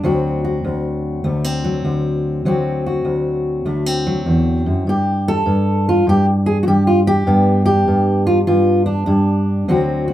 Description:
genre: acoustic country blues, solo or duo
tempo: 100 BPM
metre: 4/4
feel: swing 66% on 8ths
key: unclear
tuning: A4 = 441 Hz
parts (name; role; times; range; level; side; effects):
- fingerpicked steel-string acoustic guitar; solo; 0.0-10.1 s; D2 to A4; -14 LUFS; equal; none
room: moderate small room reverb, RT60 0.6 s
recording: rough home demo mix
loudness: -14 LUFS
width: side -12 dB against mid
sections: 0.0-10.1 A section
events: none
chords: 0.1 D7; 4.9 G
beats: | 0.05 0.66 1.26 1.86 | 2.46 3.07 3.67 4.27 | 4.88 5.48 6.08 6.68 | 7.28 7.88 8.48 9.09 | 9.69

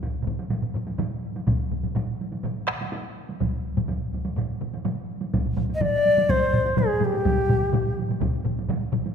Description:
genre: japanese traditional, taiko drum ensemble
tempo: 125 BPM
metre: 4/4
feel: straight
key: G miyako bushi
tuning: A4 = 440 Hz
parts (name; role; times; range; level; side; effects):
- solo taiko drums; percussion; 0.0-8.3 s; none; -31 LUFS; left 1 dB; none
- taiko ensemble; percussion; 0.0-9.1 s; none; -30 LUFS; right 3 dB; none
- taiko ensemble; percussion; 0.2-9.0 s; none; -29 LUFS; right 4 dB; none
- taiko ensemble; percussion; 0.3-9.0 s; none; -30 LUFS; left 5 dB; none
- breathy shakuhachi; melody; 5.7-8.0 s; G4 to Eb5; -22 LUFS; left 2 dB; none
room: wet concert hall reverb, RT60 1.9 s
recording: minimal, uncompressed stereo recording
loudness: -22 LUFS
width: side -7 dB against mid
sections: 0.0-5.3 A section; 5.3-9.1 B section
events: none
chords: none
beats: 0.03 0.51 0.99 | 1.48 1.96 2.44 2.92 | 3.41 3.89 4.37 4.85 | 5.33 5.81 6.29 6.77 | 7.25 7.73 8.21 8.68

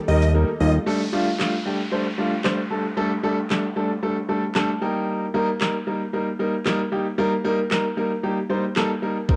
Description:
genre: dance-pop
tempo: 114 BPM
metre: 4/4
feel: straight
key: unclear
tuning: A4 = 440 Hz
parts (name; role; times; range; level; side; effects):
- string machine, cellos; sustained chords; 0.0-0.8 s; Eb3 to A4; -36 LUFS; equal; none
- supersaw chords; melody; 0.1-0.7 s; Eb5; -31 LUFS; equal; phaser, sidechain pumping, cassette tape, analog delay
- clear grand piano; accompaniment; 0.1-9.4 s; G3 to A5; -24 LUFS; equal; sidechain pumping, cassette tape
- fat analog bass; bass; 0.1-0.8 s; Eb2; -20 LUFS; equal; sidechain pumping
- pop drum kit; drums; 0.1-9.4 s; handclaps, hi-hat, kick drum, shaker, snare drum; -28 LUFS; equal; cassette tape
- downlifter; sound effects; 0.9-5.1 s; none; -38 LUFS; equal; none
room: moderate spring reverb, RT60 2.0 s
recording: home recording on cassette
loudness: -23 LUFS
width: mono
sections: 0.9-9.4 A section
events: silent gap 0.3-0.9; grand piano fill 4.3-5.1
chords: 0.0 Eb; 0.9 Gsus2; 4.8 Eb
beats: 0.34 | 0.87 1.40 1.92 2.45 | 2.98 3.50 4.03 4.55 | 5.08 5.61 6.13 6.66 | 7.18 7.71 8.24 8.76 | 9.29

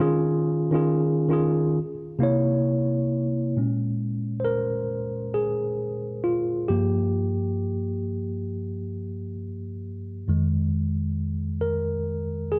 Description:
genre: hip hop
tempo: 67 BPM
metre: 4/4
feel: swing 66% on 16ths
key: unclear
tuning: A4 = 440 Hz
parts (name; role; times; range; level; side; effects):
- mellow tine electric piano; solo; 0.0-12.6 s; F2 to Db5; -26 LUFS; equal; cassette tape
room: moderate plate reverb, RT60 2.3 s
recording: dark, warm production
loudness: -26 LUFS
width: mono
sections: 0.0-3.6 A section; 3.6-12.6 B section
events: tine electric piano solo 3.6-12.6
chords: 0.0 Eb9sus4; 1.8 C7b9; 3.6 Bbm7; 6.7 Gm7; 10.3 Fm7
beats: 0.88 1.77 2.67 | 3.56 4.46 5.36 6.25 | 7.15 8.04 8.94 9.83 | 10.73 11.62 12.52

